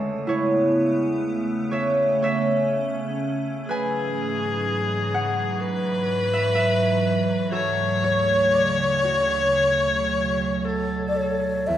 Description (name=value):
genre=celtic folk, Celtic slow air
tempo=54-63 BPM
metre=4/4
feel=rubato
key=unclear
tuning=A4 = 442 Hz
part: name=concert harp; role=accompaniment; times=0.0-11.8 s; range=E2 to G#5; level=-24 LUFS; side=equal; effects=none
part: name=icy glass pad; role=sustained chords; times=0.0-11.7 s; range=D2 to C#4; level=-26 LUFS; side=right 1 dB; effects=chorus, built-in reverb
part: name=rich viola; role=second line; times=3.7-11.7 s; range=G#4 to C#5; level=-23 LUFS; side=left 2 dB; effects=none
part: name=mellow hollow wooden flute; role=melody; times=11.1-11.8 s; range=C#5 to E5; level=-23 LUFS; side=left 1 dB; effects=none
room=wet church reverb, RT60 3.0 s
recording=dark, warm production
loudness=-20 LUFS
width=side -11 dB against mid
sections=0.0-11.7 A section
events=harp solo 0.0-11.7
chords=0.0 Aadd9; 3.7 Eadd9; 7.5 Dmaj7